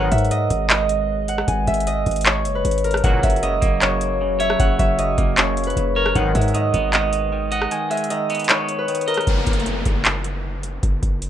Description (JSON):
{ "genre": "hip hop, trap", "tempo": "154 BPM", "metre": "4/4", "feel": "half-time", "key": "G# minor", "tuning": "A4 = 440 Hz", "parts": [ { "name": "Celtic harp", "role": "melody", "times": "0.0-11.2 s", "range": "A#4 to G#5", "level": "-22 LUFS", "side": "equal", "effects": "none" }, { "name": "warbly tape-like pad", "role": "sustained chords", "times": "0.0-9.2 s", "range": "F#3 to D#5", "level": "-31 LUFS", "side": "right 4 dB", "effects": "chorus, built-in reverb" }, { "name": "resonant sweep polysynth", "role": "stabs", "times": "0.0-0.1, 3.0-3.2, 6.2-6.3 s", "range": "B1 to F#3", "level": "-27 LUFS", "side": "left 2 dB", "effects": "chorus" }, { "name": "hard-hitting 808-style bass", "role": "bass", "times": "0.0-11.3 s", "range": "F#1 to G#2", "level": "-23 LUFS", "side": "equal", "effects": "none" }, { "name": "booming analog drum machine", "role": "drums", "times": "0.1-11.3 s", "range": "handclaps, hi-hat, kick drum, rim click", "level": "-21 LUFS", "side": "equal", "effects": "vintage 12-bit sampler grit" }, { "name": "clean electric guitar", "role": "accompaniment", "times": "3.0-9.3 s", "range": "C#3 to D#5", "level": "-26 LUFS", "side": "right 2 dB", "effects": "none" }, { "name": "downlifter", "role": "sound effects", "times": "9.3-11.3 s", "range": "none", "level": "-27 LUFS", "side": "left 1 dB", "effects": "none" } ], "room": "light reverb", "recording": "rough home demo mix", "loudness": "-17 LUFS", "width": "side -10 dB against mid", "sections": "0.0-9.3 A section; 9.3-11.3 B section", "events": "kick muted 7.7-9.3", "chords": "0.0 G#m; 3.0 F#; 6.2 G#m; 9.3 N.C.", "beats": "0.31 0.70 1.09 | 1.48 1.87 2.26 2.65 | 3.04 3.43 3.82 4.21 | 4.60 4.99 5.38 5.76 | 6.16 6.54 6.93 7.32 | 7.71 8.10 8.49 8.88 | 9.27 9.66 10.05 10.44 | 10.83 11.22" }